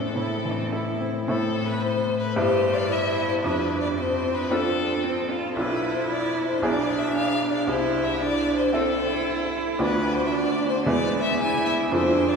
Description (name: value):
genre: quick classical-period movement for piano trio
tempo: 113 BPM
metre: 4/4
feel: rubato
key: A minor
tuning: A4 = 440 Hz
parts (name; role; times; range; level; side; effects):
- clear violin; melody; 0.0-12.4 s; A4 to G#5; -26 LUFS; left 4 dB; none
- clear cello; second line; 0.0-12.4 s; B3 to G4; -26 LUFS; right 3 dB; none
- bright baby grand piano; accompaniment; 0.0-12.4 s; B1 to D5; -26 LUFS; equal; none
room: wet cathedral reverb, RT60 5.6 s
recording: heard from further back in the room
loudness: -22 LUFS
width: side -5 dB against mid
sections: 0.0-1.3 A section; 1.3-12.4 B section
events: none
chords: 0.0 Am; 2.4 Em/G; 3.4 F; 5.6 Bm7b5; 6.6 E7/B; 7.7 Am/C; 9.8 Bdim/D; 10.9 E